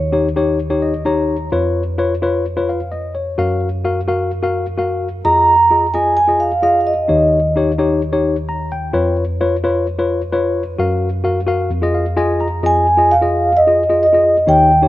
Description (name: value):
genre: soul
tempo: 130 BPM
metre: 4/4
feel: straight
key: F phrygian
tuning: A4 = 439 Hz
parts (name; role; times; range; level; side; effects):
- vibraphone with soft mallets; melody; 0.0-0.1, 5.2-7.5, 12.7-14.9 s; Eb5 to Bb5; -12 LUFS; right 1 dB; slapback echo
- tine electric piano; accompaniment; 0.0-14.9 s; Eb2 to Bb5; -16 LUFS; left 2 dB; none
room: moderate plate reverb, RT60 2.6 s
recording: none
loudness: -13 LUFS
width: side -15 dB against mid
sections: 0.0-12.6 A section; 12.6-14.9 B section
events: tine electric piano fill 0.6-1.5, 11.7-12.6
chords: 0.0 Eb7; 1.5 Db7/F; 3.4 Gbmaj7; 5.2 Fm7; 7.1 Eb7; 8.9 Db7/F; 10.8 Gbmaj7; 11.7 Fm7